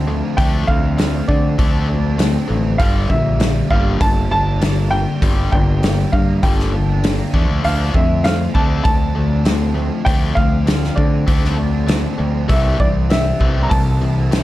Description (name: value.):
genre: indie rock.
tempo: 99 BPM.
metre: 4/4.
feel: straight.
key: D minor.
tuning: A4 = 436 Hz.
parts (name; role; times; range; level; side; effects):
warm upright piano; melody; 0.0-14.4 s; D5 to Bb5; -23 LUFS; right 1 dB; slapback echo.
distorted electric guitar; riff; 0.0-14.4 s; G2 to D4; -22 LUFS; left 5 dB; overdrive.
fuzz guitar; riff; 0.0-14.4 s; F3 to A4; -26 LUFS; right 6 dB; distortion, analog chorus, slapback echo.
growling fingered electric bass; bass; 0.0-14.4 s; G1 to D3; -18 LUFS; equal; overdrive.
loose indie drum kit; drums; 0.4-14.4 s; hi-hat, kick drum, snare drum; -18 LUFS; equal; none.
room: little or no reverb.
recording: dark, warm production.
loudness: -14 LUFS.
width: side -15 dB against mid.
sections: 0.0-14.4 A section.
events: none.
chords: 0.0 Dm7; 2.8 Gmadd9; 7.3 Dm7; 12.5 Am7/C.